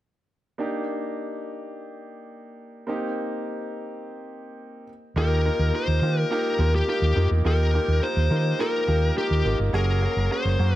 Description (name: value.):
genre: 1980s-style pop.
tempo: 105 BPM.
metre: 4/4.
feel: straight.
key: Eb major.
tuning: A4 = 440 Hz.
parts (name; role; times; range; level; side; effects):
bright grand piano; accompaniment; 0.6-10.8 s; Bb3 to Bb4; -28 LUFS; right 2 dB; none.
smooth overdriven lead guitar; melody; 5.2-10.8 s; G4 to C5; -26 LUFS; left 3 dB; digital delay.
hollow-body short-scale fingered electric bass; bass; 5.2-10.8 s; Gb1 to Eb3; -22 LUFS; equal; none.
room: moderate plate reverb, RT60 2.5 s.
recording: dark, warm production.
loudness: -21 LUFS.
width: side -14 dB against mid.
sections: 0.6-5.2 A section; 5.2-10.8 B section.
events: none.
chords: 0.6 Ebmaj7; 2.9 Cm7; 4.9 N.C.; 5.2 Ebadd9; 9.7 Gbadd9.